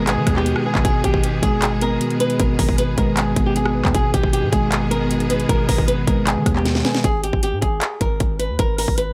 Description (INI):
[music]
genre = hip hop, trap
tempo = 155 BPM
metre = 4/4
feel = half-time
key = G# harmonic minor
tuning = A4 = 441 Hz
[part]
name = flamenco guitar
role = melody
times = 0.0-9.1 s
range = G4 to B4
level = -26 LUFS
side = equal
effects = low-pass filter
[part]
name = mellow tine electric piano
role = accompaniment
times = 0.0-7.1 s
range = B2 to B4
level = -24 LUFS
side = equal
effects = low-pass filter
[part]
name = clear symphonic string section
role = sustained chords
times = 0.0-7.0 s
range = D#3 to G#4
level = -31 LUFS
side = equal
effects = none
[part]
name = hard-hitting 808-style bass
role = bass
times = 0.0-9.1 s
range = G#1 to D#3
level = -26 LUFS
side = equal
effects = none
[part]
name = trap drum kit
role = drums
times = 0.1-9.1 s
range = handclaps, hi-hat, kick drum, rim click, snare drum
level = -23 LUFS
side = equal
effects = none
[sound]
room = little or no reverb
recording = dry, gritty hardware recording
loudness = -19 LUFS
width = mono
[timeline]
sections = 0.0-7.0 A section; 7.0-9.1 B section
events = drum fill 6.7-7.0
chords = 0.0 G#m; 7.0 G#5